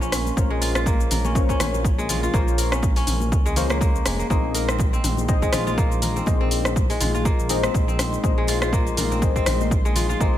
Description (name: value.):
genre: afro house.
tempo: 122 BPM.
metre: 4/4.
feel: swing 56% on 16ths.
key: unclear.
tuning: A4 = 440 Hz.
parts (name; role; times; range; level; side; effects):
dark analog pad; sustained chords; 0.0-10.4 s; Ab3 to C6; -32 LUFS; equal; chorus, sidechain pumping.
kora; arpeggios; 0.0-10.4 s; Ab3 to Bb4; -28 LUFS; equal; sidechain pumping, digital delay.
deep mellow chord stab; stabs; 0.0-10.4 s; C4 to Eb5; -29 LUFS; left 5 dB; chorus, sidechain pumping, digital delay.
smooth synth bass; bass; 0.0-10.4 s; F1 to Db2; -26 LUFS; equal; sidechain pumping.
deep house drum kit; drums; 0.0-10.3 s; cabasa, hi-hat, rim click, toms; -27 LUFS; left 1 dB; overdrive.
congas; percussion; 0.3-10.3 s; none; -33 LUFS; left 4 dB; none.
electronic kick drum; drums; 0.4-10.3 s; none; -22 LUFS; equal; overdrive.
room: little or no reverb.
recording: none.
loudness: -19 LUFS.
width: side -12 dB against mid.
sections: 0.0-10.4 A section.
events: none.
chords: 0.0 Bbmadd9; 4.3 Ab/Bb.